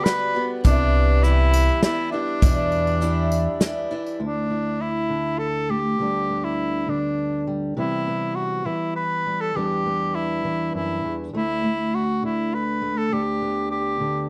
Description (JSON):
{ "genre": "indie folk with a building arrangement", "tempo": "101 BPM", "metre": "3/4", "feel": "straight", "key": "D mixolydian", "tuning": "A4 = 440 Hz", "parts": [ { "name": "clear tenor saxophone", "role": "melody", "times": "0.0-14.3 s", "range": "D4 to B4", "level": "-27 LUFS", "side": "equal", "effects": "slapback echo" }, { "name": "picked acoustic archtop guitar", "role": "accompaniment", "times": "0.0-4.2 s", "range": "E2 to F#4", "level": "-29 LUFS", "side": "equal", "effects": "none" }, { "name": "pedal harmonium", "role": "sustained chords", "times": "0.0-4.2 s", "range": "G4 to B5", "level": "-37 LUFS", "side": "equal", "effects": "none" }, { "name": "natural country drum kit", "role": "drums", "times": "0.1-3.7 s", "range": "hi-hat, kick drum, snare drum", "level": "-20 LUFS", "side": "equal", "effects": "none" }, { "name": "upright bass", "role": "bass", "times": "0.6-3.5 s", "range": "C2 to E2", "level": "-22 LUFS", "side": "equal", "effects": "none" }, { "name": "tambourine", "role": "percussion", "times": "0.6-4.1 s", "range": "none", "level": "-40 LUFS", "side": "equal", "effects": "none" }, { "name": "fingerpicked steel-string acoustic guitar", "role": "accompaniment", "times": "4.2-14.3 s", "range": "D2 to E4", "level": "-28 LUFS", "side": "equal", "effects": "none" } ], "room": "little or no reverb", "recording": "dry, close 1970s-style studio recording", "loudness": "-23 LUFS", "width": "mono", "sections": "0.0-4.2 A section; 4.2-14.3 B section", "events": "none", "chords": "0.0 Gmaj7/D; 0.6 Cmaj7; 2.4 Em7; 4.2 Dsus2; 6.0 G/D; 7.8 Cmaj7; 9.6 Em7; 11.3 Dsus2; 13.1 G/D" }